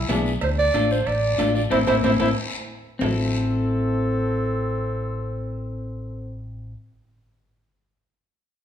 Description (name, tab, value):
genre	latin, cumbia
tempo	185 BPM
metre	4/4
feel	straight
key	A minor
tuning	A4 = 440 Hz
part	bright trombone	second line	0.0-6.4 s	C4 to E4	-30 LUFS	left 3 dB	none
part	fingered electric bass	bass	0.0-6.7 s	A1 to D2	-26 LUFS	equal	none
part	clean electric guitar	accompaniment	0.1-6.8 s	B3 to A4	-27 LUFS	left 3 dB	none
part	congas	percussion	0.1-3.1 s	none	-28 LUFS	left 4 dB	none
part	cowbell and timbales	percussion	0.1-3.1 s	none	-32 LUFS	right 5 dB	none
part	guiro	percussion	0.1-3.1 s	none	-36 LUFS	left 4 dB	none
part	warm clarinet	melody	0.4-6.4 s	A4 to D5	-25 LUFS	right 3 dB	none
room	wet large studio reverb, RT60 1.4 s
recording	minimal, uncompressed stereo recording, faint mains hum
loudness	-20 LUFS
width	side -9 dB against mid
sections	0.0-3.0 A section; 3.0-5.6 B section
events	band accent 1.7-3.0; drum fill 2.2-3.0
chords	0.4 Dm; 1.7 Am